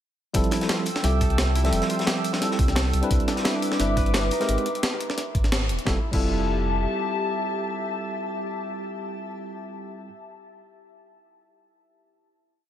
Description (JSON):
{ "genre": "liquid drum and bass", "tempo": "174 BPM", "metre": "4/4", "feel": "swing 54% on 16ths", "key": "F lydian", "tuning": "A4 = 440 Hz", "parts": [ { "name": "tine electric piano", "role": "accompaniment", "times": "0.3-10.1 s", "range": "F3 to E5", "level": "-28 LUFS", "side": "right 1 dB", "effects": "auto-pan, dub echo" }, { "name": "glassy FM pad", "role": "sustained chords", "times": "0.6-9.4 s", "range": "G4 to E6", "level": "-30 LUFS", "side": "left 2 dB", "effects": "ensemble chorus, built-in reverb, sidechain pumping" }, { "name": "sub bass with octave", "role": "bass", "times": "0.3-6.9 s", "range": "Eb1 to C2", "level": "-24 LUFS", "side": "equal", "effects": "none" }, { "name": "breakbeat sampler-style drum kit", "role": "drums", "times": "0.3-6.2 s", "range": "crash cymbal, hi-hat, snare drum", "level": "-28 LUFS", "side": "equal", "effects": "studio reverb" }, { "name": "crunchy breakbeat drum kit", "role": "drums", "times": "0.3-4.5 s", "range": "hi-hat, snare drum", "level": "-33 LUFS", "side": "equal", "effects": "high-pass filter on hats, studio reverb, high-pass filter on snare, high-pass filter on room" }, { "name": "electronic kick drum", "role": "drums", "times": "0.3-6.2 s", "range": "none", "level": "-25 LUFS", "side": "equal", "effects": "studio reverb" }, { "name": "concert harp", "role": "arpeggios", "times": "0.5-8.7 s", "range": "D4 to B4", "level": "-34 LUFS", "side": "left 1 dB", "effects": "dub echo" } ], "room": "light reverb", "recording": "none", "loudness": "-22 LUFS", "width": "side -11 dB against mid", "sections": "0.3-5.9 drop; 5.9-8.6 final chord", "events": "drop 0.3-5.9; band accent 5.5", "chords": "0.3 Fmaj9; 3.1 Cmaj9; 4.3 Abmaj9; 5.9 Fmaj9", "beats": "| 0.35 0.69 1.04 1.38 | 1.73 2.07 2.42 2.76 | 3.11 3.45 3.80 4.14 | 4.49 4.83 5.17 5.52 | 5.87 6.21 6.55 6.90 | 7.24 7.59 7.93 8.28" }